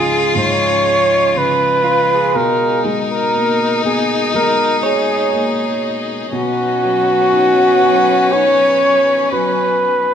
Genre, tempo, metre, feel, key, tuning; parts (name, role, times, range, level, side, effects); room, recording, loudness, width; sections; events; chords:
acoustic folk-pop ballad; 60 BPM; 4/4; straight; A4 = 440 Hz
mellow flugelhorn; melody; 0.0-10.1 s; F#4 to C#5; -14 LUFS; equal
warm violin; second line; 0.0-10.1 s; C#4 to E#4; -20 LUFS; left 4 dB
dark upright piano; accompaniment; 0.0-10.1 s; C#2 to D#4; -23 LUFS; left 1 dB
warm chamber string section; sustained chords; 0.0-10.1 s; B2 to B4; -25 LUFS; right 1 dB
electric guitar through a small old amp; arpeggios; 0.0-6.8 s; E#4 to C#5; -23 LUFS; right 6 dB; tremolo
wet large studio reverb, RT60 1.2 s; minimal, uncompressed stereo recording; -12 LUFS; side -8 dB against mid
0.0-10.1 A section
0.0 C#add9; 2.3 G#madd9/B; 6.3 Badd9